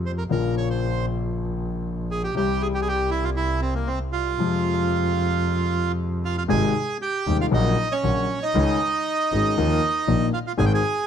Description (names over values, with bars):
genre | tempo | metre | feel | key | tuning
tango | 117 BPM | 4/4 | rubato | F harmonic minor, Ab major from 6.5 s | A4 = 440 Hz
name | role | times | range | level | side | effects
clear concert grand piano | accompaniment | 0.0-10.8 s | Eb1 to Ab4 | -25 LUFS | left 4 dB | none
bright double bass | bass | 0.0-10.8 s | Ab1 to F2 | -26 LUFS | right 1 dB | none
bandoneon | melody | 0.1-11.1 s | Bb3 to Ab5 | -24 LUFS | right 4 dB | none
room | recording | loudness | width
light reverb | dark, warm production | -21 LUFS | side -8 dB against mid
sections
0.0-6.5 A section; 6.5-11.1 B section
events
none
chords
0.3 Bbm; 2.4 C; 4.4 Fm; 6.5 Ab; 7.5 Gb/Bb; 8.6 Dbsus2; 9.6 Ebsus2